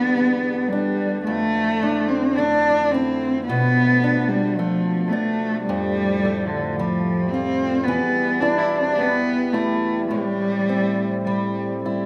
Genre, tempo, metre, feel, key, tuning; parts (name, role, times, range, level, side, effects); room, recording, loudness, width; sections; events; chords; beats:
celtic folk, Celtic slow air; 54 BPM; 4/4; rubato; A4 = 444 Hz
dark cello; melody; 0.0-12.1 s; D3 to E4; -22 LUFS; equal
fingerpicked acoustic archtop guitar; accompaniment; 0.0-12.1 s; E2 to F4; -27 LUFS; equal
mellow brass ensemble; sustained chords; 0.0-12.1 s; E2 to D4; -34 LUFS; equal
moderate recital hall reverb, RT60 1.4 s; -21 LUFS; mono
0.0-12.1 A section
0.0 Em7; 1.3 Dmadd9/F; 3.5 Bm7b5; 5.7 Fadd9; 7.9 Em; 10.1 Am7
0.16 | 1.28 2.40 3.50 4.58 | 5.69 6.79 7.89 9.00 | 10.12 11.27